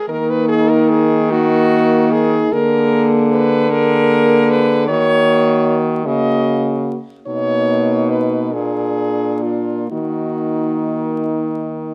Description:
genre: classical, lyrical piece for horn quartet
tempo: 41-52 BPM (dotted quarters)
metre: 6/8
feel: rubato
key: Eb minor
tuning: A4 = 444 Hz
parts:
  - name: clear French horn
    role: melody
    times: 0.0-11.3 s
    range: F4 to Eb5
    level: -20 LUFS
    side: equal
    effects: none
  - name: mellow French horn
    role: second line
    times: 0.1-11.9 s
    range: D4 to Ab4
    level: -23 LUFS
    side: equal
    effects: none
  - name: dark French horn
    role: accompaniment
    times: 0.1-11.9 s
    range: Bb3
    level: -22 LUFS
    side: equal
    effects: none
  - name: clear French horn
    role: bass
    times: 0.1-11.9 s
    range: Bb2 to Eb3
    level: -22 LUFS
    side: equal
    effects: none
room: light reverb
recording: close, detailed microphones, vinyl crackle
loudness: -16 LUFS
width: mono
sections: 0.0-11.9 A section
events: none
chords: 0.1 Ebm; 2.5 Bb7/D; 4.9 Ebm; 7.3 Bmaj7; 8.5 Bb7; 9.9 Ebm

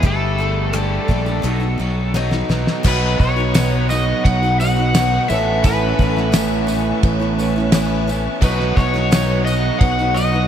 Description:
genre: folk rock and heartland rock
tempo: 86 BPM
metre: 4/4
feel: straight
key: unclear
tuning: A4 = 440 Hz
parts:
  - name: overdriven slide guitar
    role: melody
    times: 0.0-10.5 s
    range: A4 to F#5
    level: -22 LUFS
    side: equal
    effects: lush chorus
  - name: picked steel-string acoustic guitar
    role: accompaniment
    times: 0.0-10.5 s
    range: A2 to G4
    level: -25 LUFS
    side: left 5 dB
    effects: none
  - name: overdriven electric guitar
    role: riff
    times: 0.0-10.5 s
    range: A2 to A4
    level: -22 LUFS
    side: right 3 dB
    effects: none
  - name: fingered electric bass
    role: bass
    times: 0.0-10.5 s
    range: G1 to B1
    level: -20 LUFS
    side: equal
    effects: none
  - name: damped 70s drum kit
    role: drums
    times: 0.0-10.0 s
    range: crash cymbal, hi-hat, kick drum, ride cymbal, rim click, snare drum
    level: -20 LUFS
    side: equal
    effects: none
  - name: reed electric piano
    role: accompaniment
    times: 2.8-10.5 s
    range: F#4 to D#5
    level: -30 LUFS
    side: right 4 dB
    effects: overdrive, ensemble chorus
  - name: bright tonewheel organ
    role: sustained chords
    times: 2.8-10.5 s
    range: B4 to D#6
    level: -29 LUFS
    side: equal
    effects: fast rotary speaker
  - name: tambourine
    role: percussion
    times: 2.9-10.3 s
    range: none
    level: -36 LUFS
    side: right 4 dB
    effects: none
room: moderate huge ambient reverb, RT60 8.1 s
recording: dreamy mix soaked in reverb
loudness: -15 LUFS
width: side -9 dB against mid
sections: 0.0-2.8 A section; 2.8-10.5 B section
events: drum fill 2.1-2.8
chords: 0.0 Gsus2; 1.4 B; 5.3 Aadd9; 8.4 B

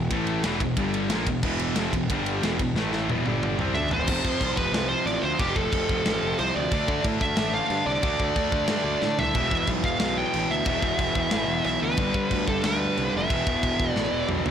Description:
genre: heavy metal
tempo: 182 BPM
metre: 4/4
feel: straight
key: E phrygian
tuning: A4 = 440 Hz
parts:
  - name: crunchy overdriven guitar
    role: riff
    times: 0.0-4.1, 9.3-14.5 s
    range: E2 to D4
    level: -33 LUFS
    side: equal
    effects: none
  - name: heavy high-gain guitar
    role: riff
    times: 0.0-14.5 s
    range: E2 to D4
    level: -30 LUFS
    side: left 12 dB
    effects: distortion
  - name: high-gain distorted guitar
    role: riff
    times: 0.0-14.5 s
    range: E2 to D4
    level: -31 LUFS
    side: right 11 dB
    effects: distortion
  - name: fuzz picked electric bass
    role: bass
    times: 0.0-14.5 s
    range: E1 to D3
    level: -31 LUFS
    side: equal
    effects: overdrive, tube saturation
  - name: tight metal drum kit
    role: drums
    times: 0.1-14.5 s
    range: crash cymbal, kick drum, ride cymbal, snare drum, toms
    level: -29 LUFS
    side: equal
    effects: soft clipping on kick
  - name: high-gain lead guitar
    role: melody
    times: 3.7-14.3 s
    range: G4 to G5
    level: -27 LUFS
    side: right 1 dB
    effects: distortion, digital delay
room: little or no reverb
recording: blown-out, overdriven recording, overdrive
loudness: -22 LUFS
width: side -8 dB against mid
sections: 0.0-4.1 A section; 4.1-14.5 B section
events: drum fill 2.8-4.1, 9.0-9.4, 14.0-14.5; half time 4.1-14.5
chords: 0.1 A5; 0.4 E5; 0.8 G5; 1.1 E5; 2.1 G5; 2.4 E5; 2.8 A5; 3.1 E5; 3.3 G5; 3.6 Em; 4.1 F; 6.7 D5; 9.4 E5; 12.0 G; 13.3 E5

